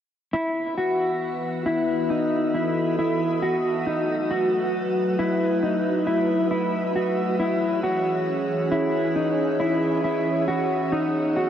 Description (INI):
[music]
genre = dream pop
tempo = 68 BPM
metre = 4/4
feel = straight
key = E major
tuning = A4 = 440 Hz
[part]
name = warbly tape-like pad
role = sustained chords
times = 0.8-11.5 s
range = E3 to D#5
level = -26 LUFS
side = right 1 dB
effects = chorus, built-in reverb
[part]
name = mellow electric guitar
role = arpeggios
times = 0.3-11.5 s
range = D#4 to F#4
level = -23 LUFS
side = left 1 dB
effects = lush chorus, tape echo
[sound]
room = wet shimmer reverb, RT60 4.9 s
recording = worn, warbling old tape, cassette tape, warbly pitch drift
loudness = -21 LUFS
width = side -9 dB against mid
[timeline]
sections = 0.3-11.5 A section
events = none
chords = 0.3 Esus2; 3.9 B7; 7.4 C#m; 10.9 G#m7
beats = | 0.33 1.22 2.10 2.98 | 3.86 4.74 5.63 6.51 | 7.39 8.27 9.16 10.04 | 10.92